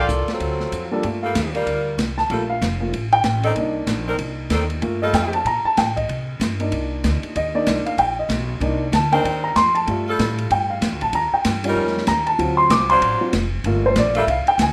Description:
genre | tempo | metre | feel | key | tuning
jazz, big band swing | 190 BPM | 4/4 | swing 61% on 8ths | G minor | A4 = 440 Hz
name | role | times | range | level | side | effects
warm saxophone section | melody | 0.0-0.9 s | F#3 to D5 | -26 LUFS | equal | none
upright bass | bass | 0.0-14.7 s | F1 to C3 | -28 LUFS | equal | none
open jazz drum kit | drums | 0.1-14.7 s | hi-hat, kick drum, ride cymbal, snare drum | -28 LUFS | equal | none
warm baby grand piano | accompaniment | 0.9-14.7 s | F#3 to D6 | -22 LUFS | equal | none
warm saxophone section | sustained chords | 1.2-5.4, 9.1-14.2 s | Eb3 to C5 | -27 LUFS | equal | none
room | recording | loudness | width
moderate large studio reverb, RT60 0.9 s | none | -20 LUFS | mono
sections
0.0-1.0 A section; 1.0-14.7 B section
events
grand piano solo 1.0-14.7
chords
0.4 D7#9; 1.0 Gm9; 3.6 Cm9; 4.8 Gm9; 6.1 Cm9; 9.9 G7sus2; 11.1 Eb7; 12.4 D7#9; 13.7 Gm9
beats
0.09 0.41 0.72 | 1.04 1.35 1.67 1.99 | 2.30 2.62 2.94 3.25 | 3.57 3.88 4.20 4.51 | 4.83 5.15 5.46 5.78 | 6.09 6.41 6.72 7.04 | 7.36 7.67 7.99 8.30 | 8.62 8.93 9.25 9.56 | 9.88 10.19 10.51 10.82 | 11.14 11.46 11.77 12.09 | 12.40 12.71 13.03 13.34 | 13.66 13.97 14.29 14.60

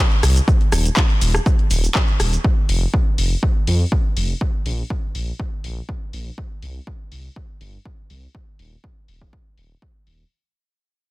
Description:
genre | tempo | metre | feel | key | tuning
progressive house | 122 BPM | 4/4 | straight | unclear | A4 = 440 Hz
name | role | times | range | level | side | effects
house drum kit | drums | 0.1-10.2 s | handclaps, hi-hat, rim click, shaker | -24 LUFS | left 1 dB | overdrive, low-pass filter on snare, low-pass filter on hats, low-pass filter on perc
dark detuned saw bass | bass | 0.2-10.2 s | Eb1 to F2 | -19 LUFS | equal | sidechain pumping
electronic kick drum | drums | 0.5-9.9 s | none | -19 LUFS | equal | overdrive
room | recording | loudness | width
little or no reverb | dense, heavily limited modern master | -17 LUFS | side -19 dB against mid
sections
0.0-10.3 A section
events
fade-out 0.0-10.3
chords
none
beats
| 0.48 0.97 1.46 1.95 | 2.44 2.94 3.43 3.92 | 4.41 4.90 5.39 5.89 | 6.38 6.87 7.36 7.85 | 8.35 8.84 9.33 9.82

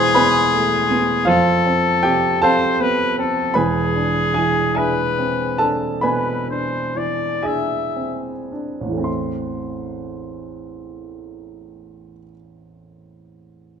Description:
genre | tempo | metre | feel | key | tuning
classical, romantic duo for trumpet and grand piano | 34-55 BPM (dotted quarters) | 12/8 | rubato | A minor | A4 = 440 Hz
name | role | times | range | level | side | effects
clear trumpet | melody | 0.0-8.2 s | G#4 to E5 | -19 LUFS | left 4 dB | none
warm baby grand piano | accompaniment | 0.0-13.8 s | E1 to C6 | -20 LUFS | right 2 dB | none
room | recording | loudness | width
moderate recital hall reverb, RT60 1.5 s | close, detailed microphones | -17 LUFS | side -7 dB against mid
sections
0.0-9.1 A section; 9.1-13.8 B section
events
slowing down 0.5-9.1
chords
0.0 E; 1.3 F; 3.6 E7; 9.1 Am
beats
0.16 1.27 2.43 | 3.56 4.77 6.03 7.45 | 9.06 10.54 12.02 13.52

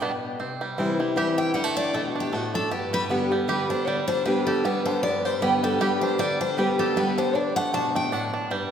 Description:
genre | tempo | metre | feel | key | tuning
bluegrass | 155 BPM | 3/4 | swing 55% on 8ths | G major | A4 = 437 Hz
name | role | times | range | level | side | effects
bluegrass banjo | melody | 0.0-8.7 s | D3 to G4 | -29 LUFS | right 3 dB | none
picked steel-string acoustic guitar | accompaniment | 0.0-8.7 s | G2 to G4 | -26 LUFS | left 1 dB | none
mandolin | stabs | 0.0-0.1, 5.4-8.2 s | A3 to G5 | -31 LUFS | right 4 dB | none
picked steel-string acoustic guitar | melody | 1.2-8.5 s | F#4 to A5 | -27 LUFS | left 2 dB | none
room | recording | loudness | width
wet church reverb, RT60 2.7 s | recorded in a church or concert hall | -22 LUFS | side -8 dB against mid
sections
0.4-8.7 A section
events
none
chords
0.4 C; 1.6 D5; 2.7 G; 7.4 D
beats
0.01 | 0.39 0.78 1.17 | 1.55 1.94 2.33 | 2.71 3.10 3.49 | 3.87 4.26 4.65 | 5.03 5.42 5.80 | 6.19 6.58 6.96 | 7.35 7.74 8.12 | 8.51

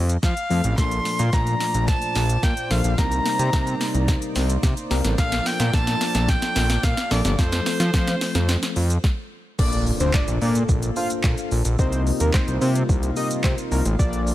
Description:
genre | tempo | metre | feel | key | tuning
dance-pop | 109 BPM | 4/4 | straight | unclear | A4 = 439 Hz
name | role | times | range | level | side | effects
tine electric piano | accompaniment | 0.0-14.3 s | F3 to Eb5 | -30 LUFS | left 3 dB | medium stereo tremolo, sidechain pumping
fat analog bass | bass | 0.0-14.3 s | G1 to F3 | -22 LUFS | equal | sidechain pumping
smooth R&B drum kit | drums | 0.1-14.3 s | crash cymbal, handclaps, hi-hat, kick drum, shaker, snare drum | -23 LUFS | equal | overdrive
clear erhu | melody | 0.2-8.5 s | C5 to C6 | -26 LUFS | equal | ping-pong delay
chorused pulse-width pad | sustained chords | 0.8-14.3 s | Bb2 to D5 | -31 LUFS | equal | sidechain pumping
fat analog lead | melody | 9.6-14.2 s | Bb4 to F5 | -29 LUFS | equal | sidechain pumping, ping-pong delay
impact | sound effects | 9.6-11.8 s | none | -34 LUFS | equal | none
room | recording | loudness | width
little or no reverb | none | -19 LUFS | side -14 dB against mid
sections
0.0-9.6 A section; 9.6-14.3 B section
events
build-up 0.0-9.6; drum fill 0.0-9.0; stop 9.0-9.6; drop 9.6-14.3; impact 9.6-11.8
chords
0.0 F; 0.8 Bbmaj7; 3.0 Cm7; 5.2 Bbmaj7; 7.4 F; 9.6 Bbmaj7; 11.8 Cm7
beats
0.23 | 0.78 1.33 1.88 2.43 | 2.98 3.53 4.08 4.63 | 5.18 5.74 6.29 6.84 | 7.39 7.94 8.49 9.04 | 9.59 10.14 10.69 11.24 | 11.79 12.34 12.89 13.44 | 13.99

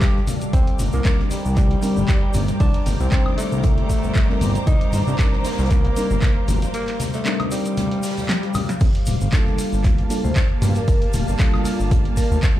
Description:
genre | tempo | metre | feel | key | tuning
deep house | 116 BPM | 4/4 | swing 54% on 16ths | C dorian | A4 = 441 Hz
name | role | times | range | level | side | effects
growling tenor saxophone | melody | 0.0-8.7 s | G3 to G4 | -28 LUFS | left 1 dB | vintage 12-bit sampler grit, ping-pong delay
deep dark ambient pad | sustained chords | 0.0-12.6 s | G3 to A5 | -30 LUFS | left 1 dB | chorus, built-in reverb, sidechain pumping
smooth synth bass | bass | 0.0-12.4 s | D1 to G2 | -22 LUFS | equal | tube saturation, sidechain pumping
electronic kick drum | drums | 0.0-12.5 s | none | -18 LUFS | equal | none
punchy analog drum machine | drums | 0.0-12.5 s | crash cymbal, handclaps, hi-hat, ride cymbal, snare drum, woodblock | -29 LUFS | equal | none
unplugged drum kit | drums | 0.0-12.6 s | hi-hat, snare drum | -40 LUFS | right 1 dB | none
egg shaker | percussion | 0.0-12.5 s | none | -38 LUFS | left 2 dB | none
rich symphonic string section | texture | 0.0-12.6 s | Eb3 to D6 | -33 LUFS | right 2 dB | sidechain pumping
congas | percussion | 0.3-12.4 s | none | -29 LUFS | left 4 dB | none
mellow FM electric piano | stabs | 1.0-12.6 s | G3 to D5 | -27 LUFS | right 1 dB | chorus, vintage 12-bit sampler grit, sidechain pumping
swell | sound effects | 8.1-8.8 s | none | -31 LUFS | left 2 dB | none
vibraphone with medium mallets | melody | 10.2-12.3 s | F4 to C5 | -30 LUFS | left 1 dB | tape echo
room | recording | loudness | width
small room ambience | played on a big sound system in a bare room, large studio reverb | -17 LUFS | side -13 dB against mid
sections
0.0-12.6 A section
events
break 6.7-8.8; swell 8.1-8.8; drum fill 8.3-8.8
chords
0.3 Cm9; 8.8 Gm9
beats
0.02 | 0.53 1.05 1.57 2.08 | 2.60 3.12 3.64 4.15 | 4.67 5.19 5.71 6.22 | 6.74 7.26 7.78 8.29 | 8.81 9.33 9.84 10.36 | 10.88 11.39 11.91 12.43

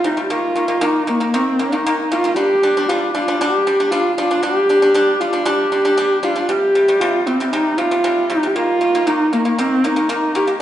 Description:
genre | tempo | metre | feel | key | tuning
mongolian traditional, Mongolian folk | 117 BPM | 4/4 | straight | unclear | A4 = 441 Hz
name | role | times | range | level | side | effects
warm horsehead fiddle | melody | 0.0-10.6 s | Bb3 to G4 | -16 LUFS | equal | none
pipa | arpeggios | 0.0-10.6 s | C3 to D4 | -20 LUFS | left 1 dB | none
room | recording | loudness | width
wet recital hall reverb, RT60 1.4 s | nothing above 10.8 kHz | -14 LUFS | side -12 dB against mid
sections
0.0-10.6 A section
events
none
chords
0.3 Eb5; 2.4 G5; 6.5 C5; 8.5 Eb5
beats
| 0.31 0.83 1.34 1.86 | 2.37 2.89 3.40 3.92 | 4.43 4.95 5.46 5.98 | 6.49 7.01 7.52 8.03 | 8.55 9.06 9.57 10.09 | 10.60

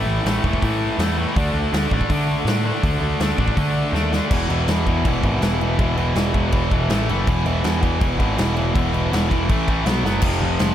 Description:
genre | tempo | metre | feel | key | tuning
punk rock | 162 BPM | 4/4 | straight | unclear | A4 = 440 Hz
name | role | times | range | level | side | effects
tight distorted guitar | riff | 0.0-10.7 s | E2 to D4 | -22 LUFS | equal | distortion
fuzz picked electric bass | bass | 0.1-10.7 s | E1 to D3 | -22 LUFS | equal | overdrive
big rock drum kit | drums | 0.3-10.7 s | crash cymbal, hi-hat, kick drum, snare drum | -22 LUFS | equal | none
room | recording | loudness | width
little or no reverb | none | -17 LUFS | side -11 dB against mid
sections
0.0-4.3 A section; 4.3-10.2 B section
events
drum fill 3.9-4.3, 10.1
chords
0.0 A5; 1.4 D5; 4.3 E5; 6.9 A5; 7.3 E5; 9.5 A5; 9.9 B5; 10.2 F5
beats
0.25 0.62 0.99 | 1.36 1.73 2.10 2.47 | 2.84 3.21 3.58 3.95 | 4.32 4.69 5.06 5.43 | 5.80 6.17 6.54 6.91 | 7.28 7.64 8.02 8.39 | 8.76 9.13 9.50 9.87 | 10.24 10.61

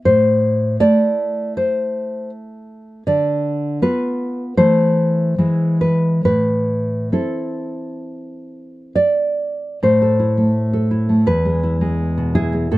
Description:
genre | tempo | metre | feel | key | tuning
romantic piece for solo classical guitar | 59-84 BPM | 4/4 | rubato | A minor | A4 = 439 Hz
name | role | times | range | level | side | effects
nylon-string guitar | solo | 0.0-12.8 s | E2 to D5 | -15 LUFS | equal | none
room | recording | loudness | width
little or no reverb | close, detailed microphones | -15 LUFS | side -17 dB against mid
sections
0.0-9.8 A section; 9.8-12.8 B section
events
none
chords
0.1 Am; 3.1 Bdim/D; 4.6 Am/E; 5.4 E; 6.2 Am; 11.3 E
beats
| 0.06 0.79 1.56 2.32 | 3.06 3.81 4.57 5.37 | 6.24 7.12 7.99 8.96 | 9.83 10.56 11.28 12.01 | 12.72

